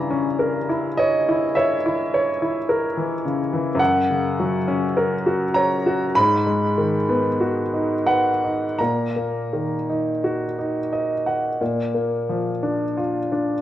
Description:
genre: classical, romantic nocturne for solo piano.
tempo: 41-54 BPM.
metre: 4/4.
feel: rubato.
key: Eb minor from 3.8 s.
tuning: A4 = 442 Hz.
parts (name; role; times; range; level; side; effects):
clear upright piano; solo; 0.0-13.6 s; Gb2 to Cb6; -19 LUFS; equal; none.
room: moderate recital hall reverb, RT60 1.5 s.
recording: worn, warbling old tape, cassette tape, warbly pitch drift, faint mains hum.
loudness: -19 LUFS.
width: side -12 dB against mid.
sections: 0.0-13.6 A section.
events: none.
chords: 0.0 Gdim7; 3.8 Gb; 6.2 Abm7; 8.8 Ebm/Bb; 11.6 Bb.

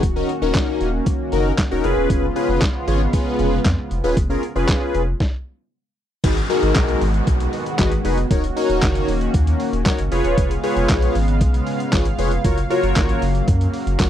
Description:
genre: dance-pop.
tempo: 116 BPM.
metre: 4/4.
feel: straight.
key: unclear.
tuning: A4 = 439 Hz.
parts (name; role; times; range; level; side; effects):
big bright polysynth; accompaniment; 0.0-14.1 s; C#4 to C#5; -21 LUFS; left 1 dB; chorus, sidechain pumping.
chorused pulse-width pad; sustained chords; 0.0-14.1 s; C#3 to E#5; -26 LUFS; equal; sidechain pumping.
warm sub bass; bass; 0.0-14.1 s; D#1 to F#2; -21 LUFS; equal; sidechain pumping.
lo-fi sampler-style drum kit; drums; 0.0-14.1 s; crash cymbal, handclaps, hi-hat, kick drum, snare drum; -20 LUFS; equal; overdrive.
downlifter; sound effects; 6.2-10.4 s; none; -31 LUFS; right 1 dB; none.
room: little or no reverb.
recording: dry, close 1970s-style studio recording.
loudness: -17 LUFS.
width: side -10 dB against mid.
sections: 0.0-6.2 A section; 6.2-14.1 B section.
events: stop 5.2-6.2.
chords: 0.0 D#m7; 1.8 C#7; 6.2 G#m7; 8.3 D#m7; 10.1 C#7; 12.4 F#maj7.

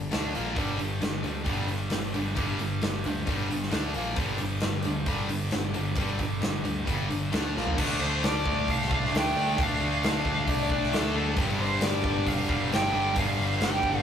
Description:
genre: hard rock.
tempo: 133 BPM.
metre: 4/4.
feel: straight.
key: G minor.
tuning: A4 = 439 Hz.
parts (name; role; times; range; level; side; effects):
heavy high-gain guitar; riff; 0.0-14.0 s; G2 to D4; -32 LUFS; left 4 dB; distortion.
tight distorted guitar; riff; 0.0-14.0 s; G2 to D4; -34 LUFS; right 4 dB; distortion.
picked electric bass; bass; 0.0-14.0 s; F1 to D2; -33 LUFS; equal; none.
big rock drum kit; drums; 0.1-13.9 s; crash cymbal, hi-hat, kick drum, snare drum, toms; -30 LUFS; equal; none.
scooped high-gain guitar; riff; 0.6-14.0 s; G2 to D4; -34 LUFS; right 1 dB; distortion.
high-gain lead guitar; melody; 8.0-14.0 s; A4 to G5; -29 LUFS; right 1 dB; distortion.
room: moderate small room reverb, RT60 0.6 s.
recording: rough rehearsal-room recording.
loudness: -25 LUFS.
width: side -8 dB against mid.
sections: 0.0-7.8 A section; 7.8-14.0 B section.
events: drum fill 7.6.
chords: 0.1 D5; 0.3 Bb5; 0.6 G5; 3.7 D5; 3.9 Bb5; 4.2 G5; 7.3 D5; 7.6 Bb5; 7.8 Dm; 11.4 G5.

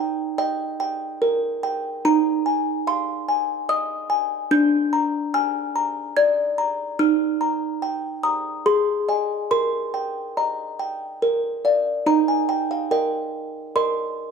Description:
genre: classical, lullaby for music box.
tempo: 72 BPM.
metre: 3/4.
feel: straight.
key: Eb major.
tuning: A4 = 440 Hz.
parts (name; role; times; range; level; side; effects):
music box; solo; 0.0-14.3 s; D4 to Ab6; -20 LUFS; equal; none.
room: moderate recital hall reverb, RT60 1.3 s.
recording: dark, warm production.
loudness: -20 LUFS.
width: side -5 dB against mid.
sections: 0.0-12.1 A section; 12.1-14.3 B section.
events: none.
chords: 0.0 Eb; 2.0 Fm7/Eb; 4.5 Bb7/D; 7.0 Eb; 8.7 Ab; 9.5 Eb/Bb; 11.2 Bb; 12.1 Eb.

